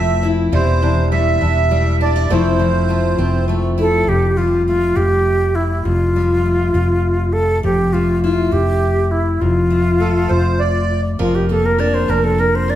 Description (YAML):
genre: acoustic folk duo or small band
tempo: 68 BPM (dotted quarters)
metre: 6/8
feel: straight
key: unclear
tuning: A4 = 440 Hz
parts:
  - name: accordion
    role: second line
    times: 0.0-3.5, 10.0-11.0 s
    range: A4 to E5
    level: -20 LUFS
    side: right 4 dB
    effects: light tremolo tuning
  - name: fingerpicked steel-string acoustic guitar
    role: accompaniment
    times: 0.0-12.8 s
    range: E2 to E4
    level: -21 LUFS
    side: left 3 dB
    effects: none
  - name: picked acoustic archtop guitar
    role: arpeggios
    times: 0.0-4.1, 11.2-12.8 s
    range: F3 to Bb4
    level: -24 LUFS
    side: right 2 dB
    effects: none
  - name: hollow-body short-scale fingered electric bass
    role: bass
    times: 0.0-12.8 s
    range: E1 to F1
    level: -18 LUFS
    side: equal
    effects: none
  - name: bright wooden flute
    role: melody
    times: 3.8-12.8 s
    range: E4 to D5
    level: -17 LUFS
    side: equal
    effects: none
room: wet large studio reverb, RT60 1.3 s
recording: heard from further back in the room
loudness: -14 LUFS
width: side -12 dB against mid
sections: 0.0-4.1 A section; 4.1-12.8 B section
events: accordion solo 0.0-4.1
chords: 0.0 Fmaj7; 0.5 Cadd9/E; 2.3 Fmaj7; 4.1 Fadd9; 7.6 Fmaj9; 11.2 Bbadd9/F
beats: | 0.53 1.41 | 2.30 3.19 | 4.07 4.96 | 5.85 6.74 | 7.63 8.52 | 9.41 10.30 | 11.19 12.08